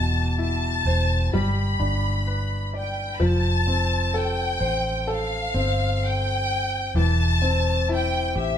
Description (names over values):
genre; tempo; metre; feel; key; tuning
pop ballad; 64 BPM; 4/4; straight; unclear; A4 = 440 Hz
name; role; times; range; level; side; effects
warm studio violin section; melody; 0.0-8.6 s; E5 to B5; -26 LUFS; left 2 dB; none
clear baby grand piano; accompaniment; 0.0-8.6 s; B2 to D5; -27 LUFS; left 1 dB; none
vintage muted fingered electric bass; bass; 0.0-8.6 s; E1 to A1; -24 LUFS; equal; none
room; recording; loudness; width
moderate stone room reverb, RT60 1.1 s; band playing live in one room; -21 LUFS; side -9 dB against mid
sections
0.0-3.2 A section; 3.2-8.6 A section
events
none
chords
0.0 Amadd9/E; 1.3 G; 3.2 Fadd9; 7.0 C/E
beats
0.39 1.33 2.26 | 3.20 4.14 5.08 6.01 | 6.95 7.89